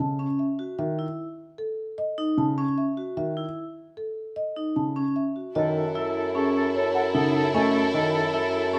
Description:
classical, minimalist pattern music; 151 BPM; 6/4; straight; F# dorian; A4 = 440 Hz
marimba with soft mallets; melody; 0.0-8.8 s; G#4 to A5; -34 LUFS; equal
warm grand piano; accompaniment; 0.0-8.2 s; C#3 to A3; -31 LUFS; equal
vibraphone with medium hard mallets; arpeggios; 0.2-8.8 s; C#4 to F#4; -30 LUFS; equal
mellow soprano saxophone; second line; 5.6-8.8 s; A4; -31 LUFS; equal
clear studio violin section; sustained chords; 5.6-8.8 s; E4 to A4; -34 LUFS; equal
mellow bassoon; bass; 5.6-8.8 s; F#2; -29 LUFS; equal
mellow hollow silver concert flute; arpeggios; 6.9-7.6 s; F#5 to G#5; -33 LUFS; equal
moderate large studio reverb, RT60 1.2 s; -26 LUFS; mono
0.0-5.6 A section; 5.6-8.8 B section
0.0 F#m7

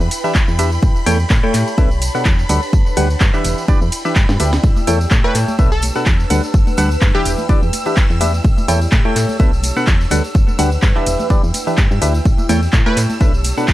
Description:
piano house; 126 BPM; 4/4; swing 55% on 16ths; E dorian; A4 = 445 Hz
string machine, violins; sustained chords; 0.0-13.7 s; B5 to E6; -30 LUFS; equal; ensemble chorus, sidechain pumping
solid FM bass; bass; 0.0-13.7 s; E1 to A2; -18 LUFS; equal; sidechain pumping
house drum kit; drums; 0.0-13.7 s; handclaps, hi-hat, ride cymbal, snare drum, tambourine; -23 LUFS; equal; small room ambience
ethereal airy pad; texture; 0.0-13.7 s; D4 to A5; -27 LUFS; right 1 dB; ensemble chorus, built-in reverb, sidechain pumping
percussive organ stab; riff; 0.2-13.7 s; B2 to G5; -20 LUFS; equal; chorus, phaser, sidechain pumping, analog delay
electronic kick drum; drums; 0.3-13.7 s; -14 LUFS; equal; small room ambience
tambourine and congas; percussion; 4.6-13.7 s; -30 LUFS; left 2 dB
plucky unison lead; melody; 5.2-7.3, 12.9-13.0 s; G4 to B4; -26 LUFS; left 1 dB; analog delay
digital ambience; dry, gritty hardware recording; -12 LUFS; side -15 dB against mid
0.0-13.7 A section
drum fill 4.3-4.6
0.0 Em7; 0.8 A7; 1.8 Bm7; 2.7 Gmaj7; 3.4 Em7; 4.6 A7; 5.6 Bm7; 6.5 Gmaj7; 7.3 Em7; 8.4 A7; 9.4 Bm7; 10.3 Gmaj7; 11.1 Em7; 12.3 A7; 13.2 Bm7

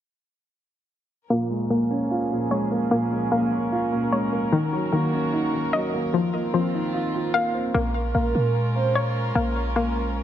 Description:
hip hop; 149 BPM; 4/4; half-time; Bb minor; A4 = 443 Hz
dark grand piano; accompaniment; 1.3-7.8 s; Bb2 to F4; -24 LUFS; right 1 dB; low-pass filter
dark chamber string section; sustained chords; 1.3-10.2 s; Eb3 to Bb4; -30 LUFS; equal; low-pass filter
hollow square pluck; arpeggios; 1.3-10.2 s; Eb3 to F5; -26 LUFS; left 3 dB; chorus, low-pass filter, tape echo
clean 808-style bass; bass; 7.7-10.2 s; Bb1 to Bb2; -24 LUFS; equal
hollow clarinet-like synth lead; second line; 7.9-8.9 s; Bb4 to C5; -29 LUFS; right 7 dB; chorus, tape echo
light reverb, small room ambience; -21 LUFS; side -10 dB against mid
1.3-7.7 A section; 7.7-10.2 B section
filter sweep 1.3-7.7
1.3 Bbm7; 4.5 Ebm7; 6.1 F7sus4; 7.7 Bbm7

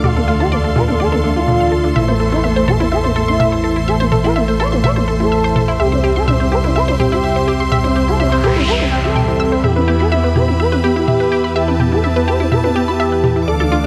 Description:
melodic techno; 125 BPM; 4/4; straight; E phrygian; A4 = 441 Hz
expressive portamento lead; melody; 0.0-13.9 s; A3 to D5; -21 LUFS; equal; analog chorus, cassette tape, tape echo
clear studio string section; sustained chords; 0.0-13.9 s; G4 to D6; -25 LUFS; equal
analog pluck; arpeggios; 0.0-13.9 s; D4 to E6; -23 LUFS; equal; chorus, tape echo
brassy analog pad; stabs; 0.0-13.9 s; A2 to E4; -23 LUFS; equal; chorus
dark detuned saw bass; bass; 0.0-13.9 s; A1 to E2; -22 LUFS; equal
analog drone; drone; 0.0-13.9 s; E2; -28 LUFS; equal
electronic toms; drums; 0.0-13.3 s; -22 LUFS; equal; overdrive, low-pass filter on toms
noise sweep; sound effects; 8.2-9.6 s; -27 LUFS; equal
moderate recital hall reverb, RT60 1.5 s, digital ambience; dry, gritty hardware recording; -15 LUFS; mono
0.0-13.9 A section
noise sweep 8.2-9.6
0.0 Dm; 2.0 Am; 5.8 C; 9.6 Em

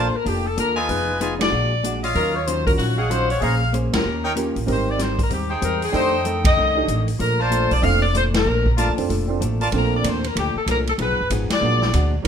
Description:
jazz, big band swing; 190 BPM; 4/4; swing 62% on 8ths; Bb major; A4 = 441 Hz
bright saxophone section; melody; 0.0-12.1 s; Gb4 to F5; -22 LUFS; left 2 dB
hollow-body jazz guitar; accompaniment; 0.0-12.3 s; F2 to C5; -27 LUFS; left 3 dB
clear trumpet section; stabs; 0.0-9.7 s; Eb4 to Bb5; -25 LUFS; right 1 dB
upright bass; bass; 0.0-12.3 s; F1 to F2; -23 LUFS; equal
swinging big-band drum kit; drums; 0.3-12.3 s; hi-hat, kick drum, ride cymbal, snare drum; -25 LUFS; equal
warm concert grand piano; accompaniment; 1.4-12.3 s; Gb3 to Bb4; -26 LUFS; right 7 dB
moderate large studio reverb, RT60 1.0 s; minimal, uncompressed stereo recording; -18 LUFS; side -8 dB against mid
0.0-9.7 A section; 9.7-12.3 A section
band accent 1.4, 3.9, 6.4, 8.3, 11.5
0.0 Bbmaj7; 0.9 Fm7b5; 1.5 Bb7b13; 2.2 Ebm9; 3.4 Bbm9; 4.0 Eb7; 4.7 Abmaj7; 5.9 F13; 7.2 Bbmaj7; 11.0 Fm7b5; 11.6 Bb7b13

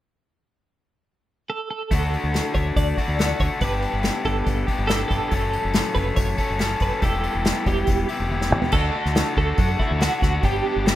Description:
indie rock; 141 BPM; 4/4; straight; D major; A4 = 440 Hz
twelve-string electric guitar; melody; 1.5-11.0 s; E4 to D5; -28 LUFS; right 3 dB; tremolo
biting overdriven guitar; riff; 1.9-11.0 s; F#3 to A4; -25 LUFS; left 3 dB
deep dub fingered electric bass; bass; 1.9-10.9 s; E1 to F#2; -24 LUFS; equal
unplugged drum kit; drums; 1.9-11.0 s; crash cymbal, hi-hat, kick drum, snare drum, toms; -24 LUFS; equal
little or no reverb; rough home demo mix; -20 LUFS; side -13 dB against mid
0.2-1.9 A section; 1.9-8.7 B section; 8.7-11.0 C section
drum fill 8.3-8.7
0.2 N.C.; 1.9 D; 3.6 G; 5.3 F#m; 7.0 Em; 8.7 D; 10.4 G

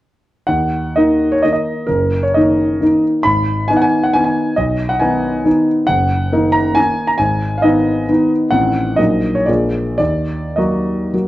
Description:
classical, romantic triple-time dance for piano with dotted rhythms; 100-144 BPM; 3/4; rubato; Eb minor; A4 = 444 Hz
warm concert grand piano; solo; 0.5-11.3 s; Gb1 to Cb6; -13 LUFS; equal
light reverb; worn, warbling old tape, cassette tape, warbly pitch drift; -13 LUFS; side -15 dB against mid
0.5-11.3 A section
0.5 Ebm; 1.9 Ebm/Gb; 3.2 Abm; 4.6 Abm/Cb; 5.9 Ebm/Gb; 7.2 Abm; 8.5 Adim7; 9.0 Ebm/Bb; 9.5 Bb7; 10.0 Ebm

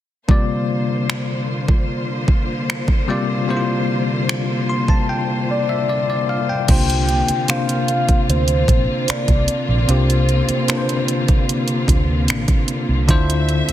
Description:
contemporary R&B; 75 BPM; 4/4; straight; A4 = 440 Hz
bell-like tine electric piano; accompaniment; 0.3-13.7 s; C3 to C6; -21 LUFS; left 2 dB; medium stereo tremolo
warm symphonic string section; sustained chords; 0.3-13.7 s; D3 to E5; -25 LUFS; right 1 dB
trap drum kit; drums; 0.3-13.7 s; crash cymbal, finger snaps, hi-hat, kick drum; -17 LUFS; right 1 dB; overdrive, soft clipping on snare
soft octave-layered synth lead; melody; 5.5-12.3 s; C5 to G5; -23 LUFS; equal; chorus, ping-pong delay
vintage muted fingered electric bass; bass; 6.7-13.7 s; A1 to D2; -18 LUFS; right 1 dB
digital ambience; dense, heavily limited modern master; -16 LUFS; side -12 dB against mid
0.3-6.7 A section; 6.7-13.7 B section
tine electric piano fill 4.3-6.7; drums muted 5.1-6.7
0.3 C9sus4; 13.1 Dm9

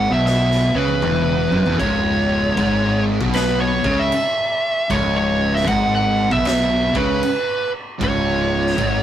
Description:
stoner and doom metal; 77 BPM; 4/4; swing 64% on 8ths; C# minor; A4 = 440 Hz
fuzz lead guitar; melody; 0.0-9.0 s; B4 to F#5; -20 LUFS; right 2 dB; distortion
fuzz guitar; riff; 0.0-9.0 s; C#2 to C#3; -19 LUFS; left 1 dB; distortion
fuzz fingered electric bass; bass; 0.0-9.0 s; C#1 to C#2; -24 LUFS; equal; overdrive
raw garage drum kit; drums; 0.3-9.0 s; crash cymbal, kick drum, snare drum, toms; -27 LUFS; equal
light reverb; rough rehearsal-room recording, tube saturation; -16 LUFS; side -10 dB against mid
0.0-9.0 A section
drum fill 0.2-1.8
0.0 C#m

